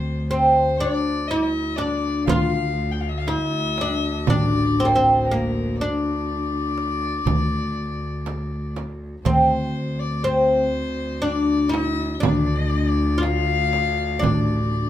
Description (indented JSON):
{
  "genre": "Arabic maqam ensemble",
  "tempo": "120 BPM (eighths)",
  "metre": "10/8",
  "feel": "straight",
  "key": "D maqam bayati",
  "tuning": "A4 = 440 Hz",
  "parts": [
    { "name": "oud", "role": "melody", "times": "0.0-14.9 s", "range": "Bb3 to F4", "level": "-22 LUFS", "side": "equal", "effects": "none" },
    { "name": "dark violin", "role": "second line", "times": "0.0-14.9 s", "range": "Bb4 to G5", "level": "-28 LUFS", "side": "left 6 dB", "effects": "none" },
    { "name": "upright bass", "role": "bass", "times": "0.0-14.9 s", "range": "A1 to D2", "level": "-25 LUFS", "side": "equal", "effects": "none" },
    { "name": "warm cello", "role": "drone", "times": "0.0-14.9 s", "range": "D2", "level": "-30 LUFS", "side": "right 1 dB", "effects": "none" },
    { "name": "darbuka", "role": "percussion", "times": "1.8-14.9 s", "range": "none", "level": "-26 LUFS", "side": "right 2 dB", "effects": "none" },
    { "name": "frame drum", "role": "percussion", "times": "1.8-14.5 s", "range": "none", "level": "-27 LUFS", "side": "right 5 dB", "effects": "none" }
  ],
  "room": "moderate large studio reverb, RT60 0.8 s",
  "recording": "band playing live in one room",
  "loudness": "-19 LUFS",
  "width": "side -12 dB against mid",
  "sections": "0.0-14.9 A section",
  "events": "none",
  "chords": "none",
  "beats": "0.28 0.78 1.28 1.78 2.28 2.78 3.27 3.77 | 4.27 4.77 5.27 5.76 6.26 6.76 7.26 7.76 8.26 8.75 | 9.25 9.75 10.25 10.74 11.24 11.74 12.24 12.73 13.23 13.73 | 14.23 14.72"
}